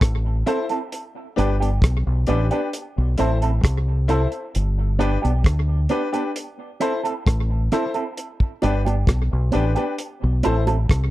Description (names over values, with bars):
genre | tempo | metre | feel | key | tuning
roots reggae | 66 BPM | 4/4 | straight | G major | A4 = 442 Hz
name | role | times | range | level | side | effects
deep dub fingered electric bass | bass | 0.0-11.1 s | G1 to D2 | -20 LUFS | equal | none
cloth-damped thuddy drum kit | drums | 0.0-11.1 s | hi-hat, kick drum, rim click | -20 LUFS | equal | none
electric guitar with an envelope filter | accompaniment | 0.5-10.8 s | B3 to A4 | -26 LUFS | right 4 dB | spring reverb, tape echo
bright grand piano | stabs | 0.5-10.6 s | D4 to C5 | -25 LUFS | left 4 dB | none
bongos | percussion | 8.6-10.9 s | none | -27 LUFS | right 3 dB | none
room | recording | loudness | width
little or no reverb | dry, close 1970s-style studio recording | -19 LUFS | side -16 dB against mid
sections
0.0-11.1 A section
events
none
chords
0.0 Am; 0.9 G; 2.7 Am; 4.5 G; 6.4 Am; 8.2 G; 10.0 Am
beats
0.01 | 0.92 1.83 2.73 3.64 | 4.55 5.46 6.36 7.27 | 8.18 9.08 9.99 10.90